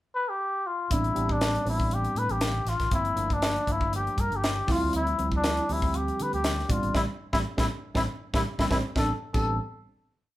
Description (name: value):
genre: electric jazz fusion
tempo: 119 BPM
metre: 4/4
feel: swing 53% on 16ths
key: A minor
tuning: A4 = 442 Hz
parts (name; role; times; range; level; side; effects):
- trumpet with cup mute; melody; 0.1-9.6 s; D4 to B4; -29 LUFS; left 2 dB; none
- bright tine electric piano; accompaniment; 0.9-9.6 s; F3 to G4; -32 LUFS; right 2 dB; phaser
- fretless electric bass; bass; 0.9-9.6 s; G1 to D3; -31 LUFS; equal; none
- crisp fusion drum kit; drums; 0.9-9.5 s; crash cymbal, hi-hat, kick drum, snare drum; -29 LUFS; equal; none
room: moderate large studio reverb, RT60 0.8 s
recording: band playing live in one room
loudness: -24 LUFS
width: side -15 dB against mid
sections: 0.0-0.9 pickup bar; 0.9-9.0 A section; 9.0-10.4 final chord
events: band accent 6.9-9.0; drum fill 8.0-9.0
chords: 0.0 N.C.; 0.9 Am11; 2.9 Gm11; 4.7 Dm11; 6.7 Am7; 9.0 Am11